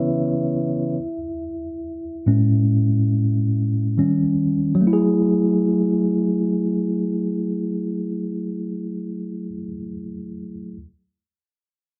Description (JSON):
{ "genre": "R&B", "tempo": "free time", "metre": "none", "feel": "none", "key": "F# dorian", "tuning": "A4 = 441 Hz", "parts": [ { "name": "mellow tine electric piano", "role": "solo", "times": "0.0-10.8 s", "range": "A2 to E5", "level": "-22 LUFS", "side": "equal", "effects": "none" } ], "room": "moderate studio reverb, RT60 0.5 s", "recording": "dark, warm production", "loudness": "-21 LUFS", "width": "mono", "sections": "0.0-4.8 A section; 4.8-8.3 B section", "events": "tine electric piano solo 0.0-4.8", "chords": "0.0 C#m7; 1.0 Amaj7; 4.0 D#7; 4.8 F#m9" }